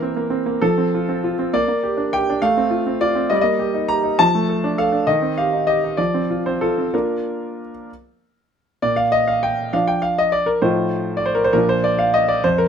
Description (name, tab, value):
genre	classical-period piano sonatina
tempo	66 BPM (dotted quarters)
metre	6/8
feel	rubato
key	Bb major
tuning	A4 = 440 Hz
part	clear concert grand piano	solo	0.0-12.7 s	F2 to Bb5	-17 LUFS	equal	none
room	light reverb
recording	minimal, uncompressed stereo recording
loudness	-17 LUFS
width	side -7 dB against mid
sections	0.0-8.8 A section; 8.8-12.7 B section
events	none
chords	0.0 C7/E; 0.6 F; 1.5 Gm/Bb; 2.4 F/A; 3.3 Eb/G; 4.2 Dm/F; 5.1 Cm/Eb; 6.0 F5; 6.9 Bb; 10.6 F7/A; 11.5 Bb